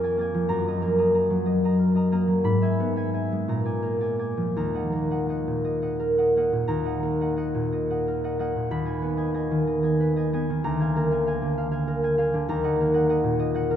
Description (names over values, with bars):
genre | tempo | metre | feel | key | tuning
classical, solo harp piece | 54-67 BPM (dotted quarters) | 6/8 | rubato | Eb minor | A4 = 439 Hz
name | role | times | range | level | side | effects
concert harp | solo | 0.0-13.8 s | D2 to B5 | -22 LUFS | equal | none
room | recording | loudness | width
wet church reverb, RT60 3.4 s | none | -22 LUFS | side -9 dB against mid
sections
0.0-6.7 A section; 6.7-13.8 A section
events
none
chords
0.0 Bb7/F; 0.5 Ebm/Gb; 2.5 E/G#; 3.5 Bb7; 4.5 Ebm; 8.7 Abm/Eb; 10.6 Bb7/D; 12.5 Ebm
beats
| 0.51 1.48 | 2.47 3.47 | 4.54 5.62 | 6.70 7.72 | 8.70 9.67 | 10.63 11.56 | 12.46 13.40